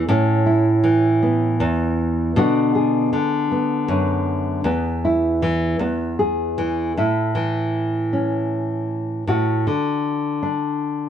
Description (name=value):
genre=folk, solo fingerstyle acoustic guitar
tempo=52 BPM (dotted quarters)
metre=6/8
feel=straight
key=A major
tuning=A4 = 442 Hz
part: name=nylon-string guitar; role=solo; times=0.0-11.1 s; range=E2 to G#4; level=-18 LUFS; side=equal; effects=none
room=light reverb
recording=dark, warm production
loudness=-18 LUFS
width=side -9 dB against mid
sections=0.0-7.0 A section; 7.0-11.1 B section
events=none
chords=0.1 Aadd9; 2.4 Bm; 4.7 E5; 5.8 E; 7.0 A; 9.3 D/A